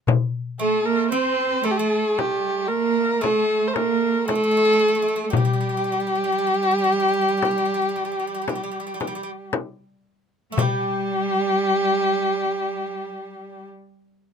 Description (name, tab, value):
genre	Turkish makam ensemble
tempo	114 BPM (eighths)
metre	10/8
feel	straight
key	unclear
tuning	A4 = 440 Hz
part	darbuka	percussion	0.1-11.1 s	none	-24 LUFS	left 5 dB	none
part	frame drum	percussion	0.1-11.1 s	none	-26 LUFS	left 5 dB	none
part	rich kamancheh	melody	0.6-13.7 s	G4 to C5	-21 LUFS	equal	none
part	Greek bouzouki	second line	0.6-13.7 s	G3 to C4	-31 LUFS	right 3 dB	none
part	warm symphonic cello section	second line	0.6-13.7 s	G3 to C4	-27 LUFS	right 4 dB	none
room	light reverb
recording	minimal, uncompressed stereo recording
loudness	-20 LUFS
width	side -7 dB against mid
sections	0.0-10.6 A section; 10.6-14.3 B section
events	none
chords	none